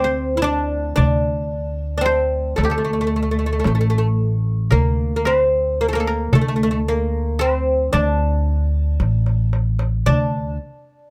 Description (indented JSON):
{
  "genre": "Turkish makam ensemble",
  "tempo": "112 BPM (eighths)",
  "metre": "10/8",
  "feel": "straight",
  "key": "unclear",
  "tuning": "A4 = 440 Hz",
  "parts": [
    { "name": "oud", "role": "melody", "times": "0.0-10.6 s", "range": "A3 to E4", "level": "-23 LUFS", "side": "equal", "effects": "none" },
    { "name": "koto", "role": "second line", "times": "0.0-10.6 s", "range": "G4 to D5", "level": "-29 LUFS", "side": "equal", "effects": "none" },
    { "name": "upright bass", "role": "bass", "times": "0.0-10.6 s", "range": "A1 to D2", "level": "-22 LUFS", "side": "equal", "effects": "none" },
    { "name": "darbuka", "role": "percussion", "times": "1.0-10.6 s", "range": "none", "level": "-24 LUFS", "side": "equal", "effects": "none" }
  ],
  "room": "little or no reverb",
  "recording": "close, detailed microphones",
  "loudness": "-19 LUFS",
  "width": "mono",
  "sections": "0.0-10.1 A section; 10.1-11.1 B section",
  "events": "drum fill 9.0-10.1",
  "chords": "none",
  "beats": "0.44 0.97 1.51 2.04 2.58 3.11 3.65 4.18 | 4.71 5.25 5.78 6.32 6.85 7.39 7.92 8.46 8.99 9.53 | 10.06"
}